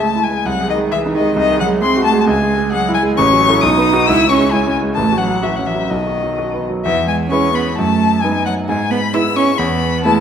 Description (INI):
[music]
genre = quick classical-period movement for piano trio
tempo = 132 BPM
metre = 2/4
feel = straight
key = C# minor, E major from 3.2 s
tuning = A4 = 440 Hz
[part]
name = rich violin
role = melody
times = 0.0-10.2 s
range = D#5 to E6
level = -17 LUFS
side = left 7 dB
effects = none
[part]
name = warm cello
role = second line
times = 0.0-10.2 s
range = D#3 to E4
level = -18 LUFS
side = right 4 dB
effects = none
[part]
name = clear concert grand piano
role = accompaniment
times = 0.0-10.2 s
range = A1 to A4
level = -18 LUFS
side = right 1 dB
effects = none
[sound]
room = wet scoring stage reverb, RT60 2.0 s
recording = none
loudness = -13 LUFS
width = side -8 dB against mid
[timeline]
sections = 0.0-6.9 A section; 6.9-10.2 B section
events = none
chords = 0.5 G#/B#; 1.4 G#7/B#; 2.3 C#m; 3.2 F#m7/A; 3.6 B; 4.1 C#m; 5.0 F#m/A; 5.9 B; 6.9 E; 7.8 B7/F#; 8.7 E/G#; 9.6 E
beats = 0.01 | 0.46 0.92 | 1.37 1.82 | 2.28 2.73 | 3.18 3.63 | 4.08 4.52 | 4.97 5.43 | 5.91 6.38 | 6.85 7.32 | 7.78 8.23 | 8.69 9.14 | 9.59 10.04